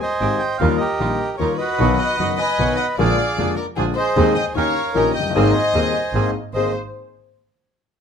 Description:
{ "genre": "tango", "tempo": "152 BPM", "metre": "3/4", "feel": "rubato", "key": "Ab major", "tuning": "A4 = 440 Hz", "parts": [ { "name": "bandoneon", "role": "melody", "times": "0.0-6.7 s", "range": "Gb4 to Ab5", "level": "-22 LUFS", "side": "right 2 dB", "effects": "none" }, { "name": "warm upright piano", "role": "accompaniment", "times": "0.2-6.7 s", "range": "Eb1 to Ab4", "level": "-22 LUFS", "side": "left 4 dB", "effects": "none" }, { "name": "bandoneon", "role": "stabs", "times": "0.2-6.7 s", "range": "G3 to Ab4", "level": "-28 LUFS", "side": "right 8 dB", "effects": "none" }, { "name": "clear double bass", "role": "bass", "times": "0.2-6.7 s", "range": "F1 to Eb2", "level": "-23 LUFS", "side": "right 3 dB", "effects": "none" }, { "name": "warm chamber violin section", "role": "second line", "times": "1.4-6.7 s", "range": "Ab4 to D#5", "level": "-23 LUFS", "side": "left 4 dB", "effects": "none" } ], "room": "moderate large studio reverb, RT60 0.8 s", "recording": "minimal, uncompressed stereo recording", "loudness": "-17 LUFS", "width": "side -7 dB against mid", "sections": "0.0-6.5 A section; 6.5-7.7 B section", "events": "none", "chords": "0.0 Abmaj7; 0.6 Ebadd9; 1.8 B; 3.0 Bb7; 4.2 Ab/Eb; 4.6 Eb7; 5.4 Abadd9" }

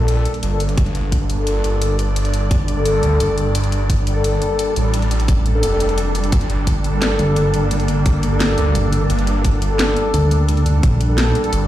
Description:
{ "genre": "dark technical drum and bass", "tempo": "173 BPM", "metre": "4/4", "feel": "straight", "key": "G minor", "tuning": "A4 = 440 Hz", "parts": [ { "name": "swarming drone", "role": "sustained chords", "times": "0.0-11.7 s", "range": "G3 to D5", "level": "-24 LUFS", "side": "right 1 dB", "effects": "built-in reverb, sidechain pumping" }, { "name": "mellow brass ensemble", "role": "stabs", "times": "0.0-11.7 s", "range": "G3 to A4", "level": "-22 LUFS", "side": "left 2 dB", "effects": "ping-pong delay" }, { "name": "phased detuned saw bass", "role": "bass", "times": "0.0-11.7 s", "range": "F1 to D2", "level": "-18 LUFS", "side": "equal", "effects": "phaser, overdrive" }, { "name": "drum and bass drum kit", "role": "drums", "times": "0.1-11.6 s", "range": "hi-hat, snare drum", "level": "-25 LUFS", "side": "left 1 dB", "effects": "none" }, { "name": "electronic kick drum", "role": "drums", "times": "0.8-10.9 s", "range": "none", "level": "-16 LUFS", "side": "equal", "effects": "none" }, { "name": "pulsing pluck wobble bass", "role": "bass", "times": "7.2-11.3 s", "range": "G1 to D2", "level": "-16 LUFS", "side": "equal", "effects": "chorus" } ], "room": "light reverb, digital ambience", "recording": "played on a big sound system in a bare room, large studio reverb", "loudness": "-15 LUFS", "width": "side -13 dB against mid", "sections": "0.0-11.7 A section", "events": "none", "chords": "0.0 Gmadd9" }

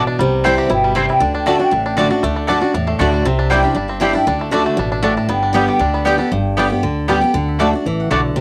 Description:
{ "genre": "bluegrass", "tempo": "235 BPM", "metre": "4/4", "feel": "straight", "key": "G major", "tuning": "A4 = 439 Hz", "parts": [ { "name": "bluegrass banjo", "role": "melody", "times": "0.0-8.2 s", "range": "G3 to G4", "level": "-26 LUFS", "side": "equal", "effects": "cassette tape" }, { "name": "mandolin", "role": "melody", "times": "0.0-8.4 s", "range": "B4 to D6", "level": "-24 LUFS", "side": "equal", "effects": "cassette tape" }, { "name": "picked steel-string acoustic guitar", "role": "accompaniment", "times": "0.0-8.4 s", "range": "G2 to G4", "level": "-20 LUFS", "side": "equal", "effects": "none" }, { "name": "mandolin", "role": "stabs", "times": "0.0-8.2 s", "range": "A3 to A5", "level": "-20 LUFS", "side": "equal", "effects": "none" }, { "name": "upright bass", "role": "bass", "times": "0.0-8.4 s", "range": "G1 to E2", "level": "-25 LUFS", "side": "equal", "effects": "none" } ], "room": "light reverb", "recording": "home recording on cassette", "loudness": "-16 LUFS", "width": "mono", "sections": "0.0-6.3 A section; 6.3-8.4 B section", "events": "none", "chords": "0.2 C; 1.2 D; 3.3 Cadd9; 4.3 D; 5.3 G; 7.3 D" }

